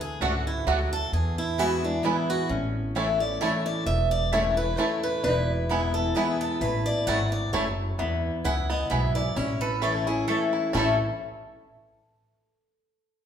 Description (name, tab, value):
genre	bluegrass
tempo	131 BPM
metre	3/4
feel	swing 54% on 8ths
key	A major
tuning	A4 = 440 Hz
part	picked swing-style acoustic guitar	melody	0.0-11.0 s	D4 to F#5	-30 LUFS	right 2 dB	none
part	picked steel-string acoustic guitar	accompaniment	0.0-10.9 s	E2 to E4	-29 LUFS	left 3 dB	none
part	upright bass	bass	0.0-11.0 s	E1 to E2	-30 LUFS	equal	none
part	bluegrass banjo	arpeggios	0.2-11.0 s	A3 to A4	-31 LUFS	right 2 dB	none
part	mandolin	stabs	0.2-10.9 s	A3 to A5	-31 LUFS	right 4 dB	none
part	lap resonator guitar	second line	2.5-11.0 s	C#4 to E4	-34 LUFS	left 2 dB	none
room	wet large studio reverb, RT60 1.4 s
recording	band playing live in one room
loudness	-23 LUFS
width	side -8 dB against mid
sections	0.0-8.0 A section; 8.0-10.7 B section; 10.7-12.1 C section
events	none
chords	0.0 D; 1.1 E; 2.5 A; 5.2 E; 6.6 A; 8.0 E; 9.4 A